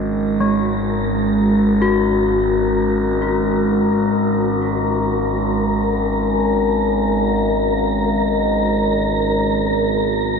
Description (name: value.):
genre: dark ambient drone.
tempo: free time.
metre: none.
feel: none.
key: unclear.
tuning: A4 = 439 Hz.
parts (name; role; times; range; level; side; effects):
dark analog pad; sustained chords; 0.0-10.4 s; G#3 to A#4; -20 LUFS; right 2 dB; chorus.
overtone-sweeping drone; drone; 0.0-10.4 s; G#1; -22 LUFS; equal; chorus, built-in reverb.
wind-like tuned noise texture; texture; 0.3-10.4 s; A#4 to A#5; -22 LUFS; left 2 dB; built-in reverb.
gamelan-type bronze metallophone; arpeggios; 0.4-7.4 s; G#3 to F#4; -21 LUFS; left 4 dB; ping-pong delay.
room: wet cathedral reverb, RT60 5.2 s.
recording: in a vast, echoing space.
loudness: -15 LUFS.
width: side -5 dB against mid.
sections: 0.0-10.4 A section.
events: none.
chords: 0.0 G#sus2.